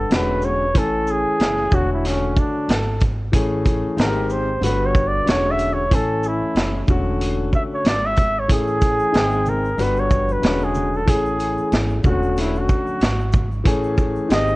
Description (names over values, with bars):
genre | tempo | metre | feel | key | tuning
hip hop, jazz-hop | 93 BPM | 4/4 | swing 57% on 16ths | A major | A4 = 440 Hz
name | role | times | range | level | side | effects
breathy flugelhorn | melody | 0.0-14.6 s | C#4 to E5 | -22 LUFS | right 1 dB | none
dark baby grand piano | accompaniment | 0.0-14.6 s | D3 to G#5 | -23 LUFS | left 2 dB | none
upright bass | bass | 0.0-14.6 s | E1 to A1 | -25 LUFS | equal | none
vintage drum kit | drums | 0.1-14.5 s | hi-hat, kick drum, shaker, snare drum | -20 LUFS | equal | none
egg shaker and congas | percussion | 8.5-14.6 s | none | -33 LUFS | right 2 dB | none
room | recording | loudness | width
small room ambience | worn, warbling old tape, cassette tape, warbly pitch drift, nothing above 10.4 kHz | -17 LUFS | side -20 dB against mid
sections
0.0-14.6 A section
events
flugelhorn solo 0.0-14.6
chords
0.1 E13; 0.8 Amaj7; 1.7 E13sus4; 3.3 Amaj7; 4.0 G#maj7; 4.6 Gmaj7; 5.3 E13; 5.9 Amaj7; 6.9 E13sus4; 8.5 Amaj7; 9.1 G#maj7; 9.8 Gmaj7; 10.4 E13; 11.1 Amaj7; 12.0 E13sus4; 13.7 Amaj7